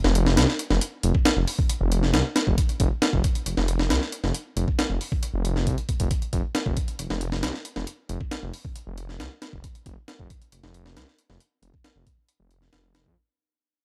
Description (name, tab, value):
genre	breakbeat, breaks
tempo	136 BPM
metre	4/4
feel	straight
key	unclear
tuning	A4 = 440 Hz
part	detuned saw bass	bass	0.0-13.1 s	F1 to F2	-27 LUFS	equal	none
part	breakbeat sampler-style drum kit	drums	0.0-13.2 s	hi-hat, kick drum, snare drum	-27 LUFS	equal	small room reverb
room	digital ambience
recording	dry, gritty hardware recording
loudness	-25 LUFS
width	mono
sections	0.0-13.2 A section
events	fade-out 0.0-13.2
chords	none